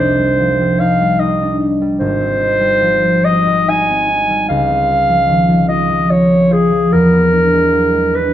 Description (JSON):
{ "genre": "classical, impressionist duo for clarinet and harp", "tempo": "74 BPM", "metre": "3/4", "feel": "rubato", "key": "Ab major", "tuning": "A4 = 439 Hz", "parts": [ { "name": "mellow clarinet", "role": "melody", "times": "0.0-8.3 s", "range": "Ab4 to Ab5", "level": "-14 LUFS", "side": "equal", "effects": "none" }, { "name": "concert harp", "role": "accompaniment", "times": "0.0-8.3 s", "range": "Ab1 to F4", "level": "-14 LUFS", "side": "equal", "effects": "none" } ], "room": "moderate recital hall reverb, RT60 1.5 s", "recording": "close, detailed microphones", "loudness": "-11 LUFS", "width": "side -11 dB against mid", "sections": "0.0-8.3 A section", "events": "none", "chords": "0.0 Cmadd9; 2.0 Abmaj7; 4.5 Dbmaj7; 6.9 E9" }